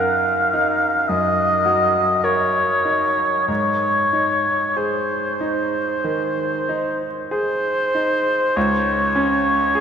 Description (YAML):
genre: classical, romantic duo for oboe and grand piano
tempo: 46-54 BPM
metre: 4/4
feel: rubato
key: unclear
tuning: A4 = 440 Hz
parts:
  - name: warm oboe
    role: melody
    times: 0.0-9.8 s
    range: C5 to F5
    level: -18 LUFS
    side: left 1 dB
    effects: none
  - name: bright grand piano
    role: accompaniment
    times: 0.0-9.8 s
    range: Db2 to Bb4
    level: -23 LUFS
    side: right 2 dB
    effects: none
room: wet cathedral reverb, RT60 7.4 s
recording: in a vast, echoing space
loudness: -17 LUFS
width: side -7 dB against mid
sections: 0.0-8.6 A section; 8.6-9.8 A section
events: none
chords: 0.0 Ebm/Gb; 3.5 Ab; 8.6 N.C.